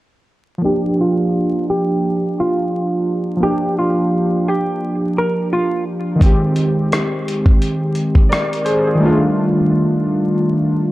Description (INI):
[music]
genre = lo-fi hip hop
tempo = 86 BPM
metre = 4/4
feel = swing 60% on 16ths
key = Bb major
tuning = A4 = 443 Hz
[part]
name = warbly lo-fi synth keys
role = accompaniment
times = 0.6-10.9 s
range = Eb3 to D5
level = -16 LUFS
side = equal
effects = chorus, cassette tape, low-pass filter
[part]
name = archtop guitar, miked and amplified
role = melody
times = 0.7-5.8 s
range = F4 to Bb4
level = -19 LUFS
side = right 1 dB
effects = low-pass filter, analog delay
[part]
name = dusty soul sampler-style drum kit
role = drums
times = 6.2-8.8 s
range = hi-hat, kick drum, rim click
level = -14 LUFS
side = equal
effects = none
[sound]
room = moderate plate reverb, RT60 2.8 s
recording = dark, warm production, vinyl crackle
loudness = -14 LUFS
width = side -17 dB against mid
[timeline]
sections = 0.6-10.9 A section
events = filter sweep 0.6-10.9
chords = 0.6 Bb6; 6.2 Abmaj7; 9.0 F13